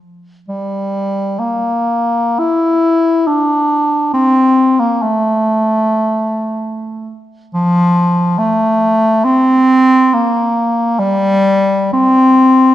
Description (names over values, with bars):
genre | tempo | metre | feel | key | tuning
classical, free, expressive piece for unaccompanied bass clarinet | free time | none | none | F major | A4 = 440 Hz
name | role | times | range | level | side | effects
warm bass clarinet | solo | 0.0-12.7 s | F3 to E4 | -11 LUFS | equal | none
room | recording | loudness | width
wet recital hall reverb, RT60 1.7 s | dark, warm production | -11 LUFS | side -13 dB against mid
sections
0.0-12.7 A section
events
none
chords
none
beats
free time